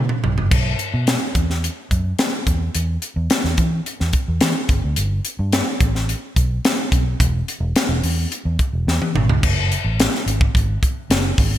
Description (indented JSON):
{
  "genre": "polished 1980s jazz-funk pop",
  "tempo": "108 BPM",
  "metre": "4/4",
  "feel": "straight",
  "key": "unclear",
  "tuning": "A4 = 438 Hz",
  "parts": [
    { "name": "vintage muted fingered electric bass", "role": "bass", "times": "0.0-11.6 s", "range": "E1 to E3", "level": "-20 LUFS", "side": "equal", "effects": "none" },
    { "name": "crisp fusion drum kit", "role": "drums", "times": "0.1-11.5 s", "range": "crash cymbal, hi-hat, kick drum, snare drum, toms", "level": "-18 LUFS", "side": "equal", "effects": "gated reverb" }
  ],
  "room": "light reverb",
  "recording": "bright 1980s-style digital production",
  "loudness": "-17 LUFS",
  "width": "side -12 dB against mid",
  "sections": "0.5-9.4 A section; 9.4-11.6 B section",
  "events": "drum fill 0.0-0.5, 8.9-9.4",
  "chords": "none"
}